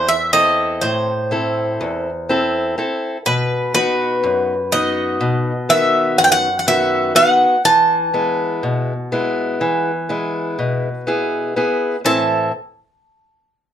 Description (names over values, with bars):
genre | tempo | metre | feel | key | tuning
greek folk, Greek bouzouki band | 123 BPM (eighths) | 9/8 | straight | A dorian sharp4 | A4 = 441 Hz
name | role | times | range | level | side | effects
Greek bouzouki | melody | 0.0-12.5 s | B4 to A5 | -16 LUFS | right 1 dB | none
fingerpicked steel-string acoustic guitar | accompaniment | 0.0-12.5 s | E2 to E5 | -19 LUFS | left 1 dB | none
room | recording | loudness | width
moderate studio ambience, RT60 0.5 s | none | -15 LUFS | side -9 dB against mid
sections
0.0-12.1 A section; 12.1-13.7 B section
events
none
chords
0.0 Am; 3.3 B; 7.7 E; 12.1 Am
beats
0.32 0.81 1.30 1.79 2.28 2.77 | 3.25 3.74 4.23 4.72 5.21 5.70 6.19 6.67 7.16 | 7.65 8.14 8.63 9.12 9.61 10.10 10.58 11.07 11.56 | 12.05